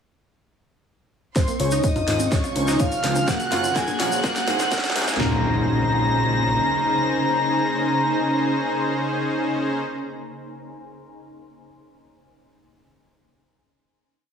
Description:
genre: progressive house.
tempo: 125 BPM.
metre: 4/4.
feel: straight.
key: Bb minor.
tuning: A4 = 440 Hz.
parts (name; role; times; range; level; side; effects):
soft octave-layered synth lead; melody; 1.4-9.8 s; C5 to Bb5; -25 LUFS; equal; chorus, cassette tape, diffuse ambient delay.
dark studio violin section; second line; 1.4-9.8 s; C6 to Bb6; -30 LUFS; left 2 dB; sidechain pumping, analog delay.
shimmering ambient pad; sustained chords; 2.2-9.8 s; C3 to C5; -28 LUFS; equal; chorus, built-in reverb, vintage 12-bit sampler grit, sidechain pumping.
house drum kit; drums; 1.4-5.3 s; kick drum, snare drum, toms; -24 LUFS; equal; overdrive.
house drum kit; drums; 1.4-5.2 s; hi-hat, snare drum; -28 LUFS; equal; overdrive, high-pass filter on snare, high-pass filter on hats.
tube shaker; percussion; 1.4-5.2 s; none; -34 LUFS; left 1 dB; none.
riser and impact; sound effects; 3.4-9.9 s; none; -32 LUFS; left 1 dB; none.
wide unison pluck; arpeggios; 1.5-5.4 s; F3 to Bb4; -28 LUFS; right 1 dB; phaser, sidechain pumping, analog delay.
soft supersaw; stabs; 1.6-9.8 s; Db4 to Db5; -26 LUFS; equal; sidechain pumping, low-pass filter, analog delay.
fat analog bass; bass; 1.6-6.6 s; Gb1 to Db2; -25 LUFS; equal; tube saturation, sidechain pumping.
electronic toms and congas; percussion; 2.0-5.2 s; none; -33 LUFS; left 1 dB; sidechain pumping on toms, sidechain pumping on perc.
room: wet plate reverb, RT60 1.3 s, digital ambience.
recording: dreamy mix soaked in reverb, high-pass filter.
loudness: -19 LUFS.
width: side -7 dB against mid.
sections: 1.4-5.2 build; 5.2-9.0 final chord.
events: build-up 1.4-5.2; drum fill 1.4-5.2; filter sweep on synth pluck 1.4-5.2; filter sweep on supersaw synth 1.4-5.2; filter sweep on ambient pad 1.4-5.2; filter sweep 1.4-5.2.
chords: 1.4 Dbmaj7; 2.3 Bbmadd9/Db; 3.3 Gbmaj7; 4.2 Ab7; 5.2 Bbm11.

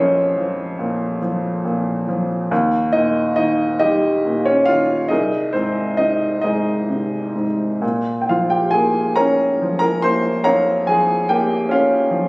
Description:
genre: classical, lyrical solo piano.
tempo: 45 BPM (dotted quarters).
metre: 6/8.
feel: uneven beats, rubato.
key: unclear.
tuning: A4 = 441 Hz.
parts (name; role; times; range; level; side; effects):
warm upright piano; solo; 0.0-12.3 s; C2 to C6; -16 LUFS; equal; none.
room: light reverb.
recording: recorded on a phone in the room, studio reverb, compression.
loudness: -16 LUFS.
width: side -27 dB against mid.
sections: 0.0-12.3 A section.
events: none.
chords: 0.0 Bbm; 2.5 Eb7; 5.1 Abadd9/C; 7.8 Bbm.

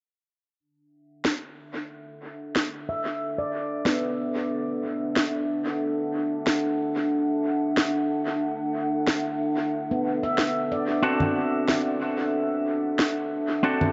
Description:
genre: ambient dub.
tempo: 92 BPM.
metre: 4/4.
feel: straight.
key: D mixolydian.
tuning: A4 = 442 Hz.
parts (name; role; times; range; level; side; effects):
warbly tape-like pad; sustained chords; 1.7-13.9 s; D4 to F#5; -29 LUFS; equal; chorus, built-in reverb.
electronic snare drum and congas; drums; 1.2-13.9 s; none; -30 LUFS; equal; studio ambience, dub echo.
handpan; arpeggios; 2.9-13.2 s; B3 to E5; -34 LUFS; equal; low-pass filter, dub echo.
semi-hollow electric guitar; stabs; 11.0-13.9 s; C4 to A4; -29 LUFS; equal; dub echo.
room: moderate spring reverb, RT60 1.8 s.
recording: echo-heavy mix, nothing above 7.8 kHz.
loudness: -26 LUFS.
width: mono.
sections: 0.6-13.9 A section.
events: filter sweep on ambient pad 0.6-13.9; filter sweep on handpan 0.6-13.9.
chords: 0.6 D7.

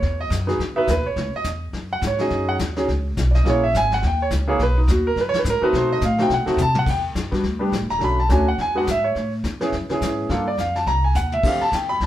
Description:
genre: jazz piano trio.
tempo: 210 BPM.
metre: 4/4.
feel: swing 60% on 8ths.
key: unclear.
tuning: A4 = 442 Hz.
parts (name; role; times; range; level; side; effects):
warm baby grand piano; melody; 0.0-12.1 s; G3 to B5; -20 LUFS; right 1 dB; none.
upright bass; bass; 0.0-12.1 s; E1 to C3; -22 LUFS; equal; none.
vintage brush drum kit; drums; 0.0-12.1 s; brushed snare drum, crash cymbal, hi-hat, kick drum, snare drum, toms; -28 LUFS; left 2 dB; none.
room: moderate studio reverb, RT60 0.8 s.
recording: band playing live in one room.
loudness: -18 LUFS.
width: side -13 dB against mid.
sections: 0.0-6.9 A section; 6.9-12.1 A section.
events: grand piano solo 0.0-12.1; drum fill 6.3-6.9, 11.1.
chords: 0.0 Emaj7sus2; 1.2 C#m; 1.7 F#sus2; 2.3 B6; 3.4 A#m7b5; 4.0 D#5; 4.6 G#m7; 5.7 B7b9; 6.9 Em9; 8.0 Bm7; 8.6 E; 9.2 Amaj9; 10.3 Gm9; 10.9 Cm7; 11.4 F69.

